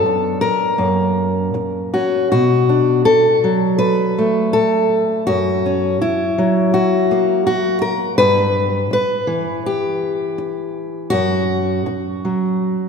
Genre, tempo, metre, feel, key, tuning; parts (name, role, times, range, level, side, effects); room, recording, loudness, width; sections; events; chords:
folk, solo fingerstyle acoustic guitar; 82 BPM; 4/4; straight; B minor; A4 = 444 Hz
fingerpicked steel-string acoustic guitar; solo; 0.0-12.9 s; F#2 to B4; -15 LUFS; left 1 dB
wet church reverb, RT60 2.9 s; recorded in a church or concert hall; -15 LUFS; side -6 dB against mid
0.0-2.3 A section; 2.3-12.9 B section
0.0 Bm/F#; 0.8 F#; 2.3 Bm7; 5.3 F#; 8.2 Em/G; 11.1 F#5